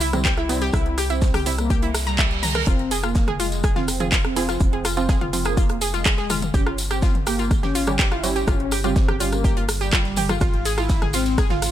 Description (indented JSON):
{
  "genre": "melodic techno",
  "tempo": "124 BPM",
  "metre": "4/4",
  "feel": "straight",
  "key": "F harmonic minor",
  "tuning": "A4 = 439 Hz",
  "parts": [
    { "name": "mellow synth brass", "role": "melody", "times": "0.0-11.7 s", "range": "G3 to F4", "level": "-28 LUFS", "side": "equal", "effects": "chorus, sidechain pumping, digital delay" },
    { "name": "analog pluck", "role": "arpeggios", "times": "0.0-11.5 s", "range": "E4 to Bb5", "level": "-27 LUFS", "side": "equal", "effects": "chorus, sidechain pumping, ping-pong delay" },
    { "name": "tight sequencer bass", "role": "bass", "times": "0.0-11.7 s", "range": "F1 to C2", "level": "-27 LUFS", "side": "equal", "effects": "sidechain pumping" },
    { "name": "house drum kit", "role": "drums", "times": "0.0-11.7 s", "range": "handclaps, hi-hat, ride cymbal, rim click, toms", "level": "-26 LUFS", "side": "equal", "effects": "studio reverb" },
    { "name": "modern studio drum kit", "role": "drums", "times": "0.0-11.7 s", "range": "hi-hat, shaker, snare drum", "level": "-39 LUFS", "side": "right 1 dB", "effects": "none" },
    { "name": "tambourine", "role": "percussion", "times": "0.0-11.7 s", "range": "none", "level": "-33 LUFS", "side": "left 4 dB", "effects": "none" },
    { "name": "filtered dub chord stab", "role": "stabs", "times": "0.1-10.4 s", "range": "C3 to G4", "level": "-28 LUFS", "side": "right 4 dB", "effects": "chorus, sidechain pumping, ping-pong delay" },
    { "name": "electronic kick drum", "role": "drums", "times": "0.3-11.5 s", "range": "none", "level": "-21 LUFS", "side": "equal", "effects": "studio reverb" },
    { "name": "reverse cymbal", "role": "sound effects", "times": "1.9-2.7 s", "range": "none", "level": "-30 LUFS", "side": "right 5 dB", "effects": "none" }
  ],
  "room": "studio ambience",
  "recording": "none",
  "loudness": "-18 LUFS",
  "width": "side -12 dB against mid",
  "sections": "0.0-11.7 A section",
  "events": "reverse cymbal 1.9-2.7",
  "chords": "0.0 C7; 2.7 Fm; 6.5 G7(b5, no3); 10.4 Fm/Ab"
}